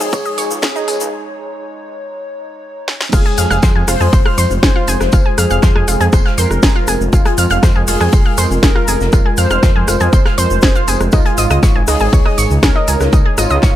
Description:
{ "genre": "melodic techno", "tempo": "120 BPM", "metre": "4/4", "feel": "straight", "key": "F minor", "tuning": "A4 = 440 Hz", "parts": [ { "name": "mellow synth brass", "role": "melody", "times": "0.0-13.8 s", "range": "F4 to C5", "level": "-20 LUFS", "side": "equal", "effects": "chorus, sidechain pumping, digital delay" }, { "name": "dark analog pad", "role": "sustained chords", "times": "0.0-13.8 s", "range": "Ab3 to Db5", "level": "-24 LUFS", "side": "right 2 dB", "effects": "chorus, vintage 12-bit sampler grit, sidechain pumping" }, { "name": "analog pluck", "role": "arpeggios", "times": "0.0-13.7 s", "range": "Eb4 to F6", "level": "-20 LUFS", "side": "right 1 dB", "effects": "chorus, sidechain pumping, tape echo" }, { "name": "dark detuned saw bass", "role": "bass", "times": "0.0-13.7 s", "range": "F1 to F2", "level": "-16 LUFS", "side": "equal", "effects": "tube saturation, sidechain pumping, high-pass filter" }, { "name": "overtone-sweeping drone", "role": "drone", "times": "0.0-1.1 s", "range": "F2 to F3", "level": "-43 LUFS", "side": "left 2 dB", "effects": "none" }, { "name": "tube shaker", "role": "percussion", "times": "0.0-13.7 s", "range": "none", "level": "-26 LUFS", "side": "left 3 dB", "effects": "none" }, { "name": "electronic kick drum", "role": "drums", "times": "0.1-13.7 s", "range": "none", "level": "-12 LUFS", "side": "equal", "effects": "overdrive" }, { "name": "modern studio drum kit", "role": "drums", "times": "0.1-13.7 s", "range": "hi-hat, snare drum, tambourine", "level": "-28 LUFS", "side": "left 2 dB", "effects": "sidechain pumping on hats, high-pass filter on hats, high-pass filter on snare, sidechain pumping on perc, high-pass filter on perc, high-pass filter on room" }, { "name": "techno drum kit", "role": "drums", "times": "0.4-13.5 s", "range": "crash cymbal, hi-hat, rim click, snare drum", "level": "-19 LUFS", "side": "equal", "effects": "overdrive" } ], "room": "studio reverb", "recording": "high-pass filter", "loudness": "-10 LUFS", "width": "side -12 dB against mid", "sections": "0.0-3.1 A section; 3.1-13.8 B section", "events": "build-up 0.0-3.1; filter sweep 0.0-3.1; break 1.1-3.1; drum fill 2.9; drop 3.1-13.8", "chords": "0.0 Dbsus2; 3.1 Fm; 11.1 Dbsus2" }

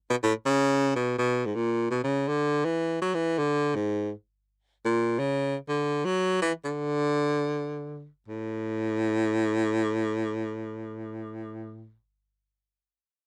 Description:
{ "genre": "jazz", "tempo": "free time", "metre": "none", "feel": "none", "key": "A major", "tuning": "A4 = 440 Hz", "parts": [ { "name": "bright baritone saxophone", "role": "solo", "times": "0.1-12.0 s", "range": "G#2 to F#3", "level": "-28 LUFS", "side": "equal", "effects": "none" } ], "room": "light reverb", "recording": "dry, close 1970s-style studio recording", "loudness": "-28 LUFS", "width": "mono", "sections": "0.0-2.4 A section; 2.4-8.3 B section; 8.3-11.2 C section", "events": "none", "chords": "none" }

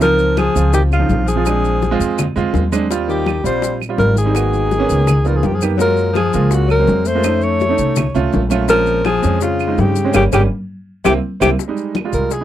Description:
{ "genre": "Afro-Cuban jazz", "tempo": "166 BPM", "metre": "4/4", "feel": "straight", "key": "F minor", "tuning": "A4 = 441 Hz", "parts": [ { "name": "breathy alto saxophone", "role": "melody", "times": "0.0-12.4 s", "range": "F4 to Db5", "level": "-18 LUFS", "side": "equal", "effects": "none" }, { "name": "breathy tenor saxophone", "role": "second line", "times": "0.0-11.5 s", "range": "C3 to A3", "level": "-22 LUFS", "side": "left 10 dB", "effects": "none" }, { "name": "warm grand piano", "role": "accompaniment", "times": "0.0-12.4 s", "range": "F3 to G4", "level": "-20 LUFS", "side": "right 7 dB", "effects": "none" }, { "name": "upright bass", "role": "bass", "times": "0.0-12.4 s", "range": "G1 to G2", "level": "-18 LUFS", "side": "equal", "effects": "none" }, { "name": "bongos", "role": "percussion", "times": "0.0-12.4 s", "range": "none", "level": "-26 LUFS", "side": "left 10 dB", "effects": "none" }, { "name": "congas", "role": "percussion", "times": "0.0-12.4 s", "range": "none", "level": "-24 LUFS", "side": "left 1 dB", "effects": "none" }, { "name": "maracas", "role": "percussion", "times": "0.0-12.4 s", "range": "none", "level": "-32 LUFS", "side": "left 24 dB", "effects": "none" }, { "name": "claves", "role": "percussion", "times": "0.4-12.1 s", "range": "none", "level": "-28 LUFS", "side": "right 20 dB", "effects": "none" } ], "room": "light reverb", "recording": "dry, close 1970s-style studio recording", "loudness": "-13 LUFS", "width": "side -12 dB against mid", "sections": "0.0-11.6 A section", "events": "band accent 10.1-11.6; drum fill 10.5-11.6", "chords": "0.0 Dbmaj9; 1.5 Bb9; 2.9 Eb69; 4.4 Abm7; 5.1 Db13; 5.8 Gbmaj7; 7.2 F7b13; 8.7 Bbm9; 10.1 Gdim; 10.9 C7; 11.6 Fm7" }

